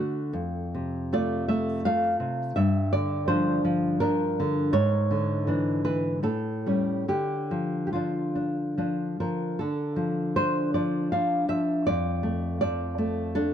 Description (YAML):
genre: romantic piece for solo classical guitar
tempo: 70-84 BPM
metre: 3/4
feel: rubato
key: D minor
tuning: A4 = 440 Hz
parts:
  - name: nylon-string guitar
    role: solo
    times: 0.0-13.5 s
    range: F2 to F5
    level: -24 LUFS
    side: equal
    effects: none
room: light reverb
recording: dark, warm production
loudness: -24 LUFS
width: side -9 dB against mid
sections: 0.0-9.6 A section; 9.6-13.5 B section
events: none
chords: 0.4 F; 2.6 Gm7; 4.7 E7/G#; 6.2 A7; 7.1 Dm; 11.9 Dm/F